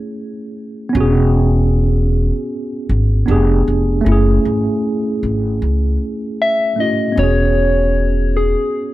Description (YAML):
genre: hip hop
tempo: 77 BPM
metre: 4/4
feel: swing 57% on 16ths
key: E major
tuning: A4 = 441 Hz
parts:
  - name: mellow tine electric piano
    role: accompaniment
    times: 0.0-8.9 s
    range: A3 to G#4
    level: -18 LUFS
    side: right 1 dB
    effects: medium stereo tremolo, low-pass filter
  - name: upright bass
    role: bass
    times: 0.9-8.5 s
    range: E1 to C#2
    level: -15 LUFS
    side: equal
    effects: none
  - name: soft struck synth lead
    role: melody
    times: 6.4-8.9 s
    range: G#4 to E5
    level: -17 LUFS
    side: left 2 dB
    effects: chorus, low-pass filter
room: light reverb, small room ambience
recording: dark, warm production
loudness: -13 LUFS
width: side -16 dB against mid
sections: 0.0-8.9 A section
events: none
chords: 0.0 F#m9 (rootless); 0.9 E69; 3.3 Fdim7; 4.1 F#m9; 7.2 E69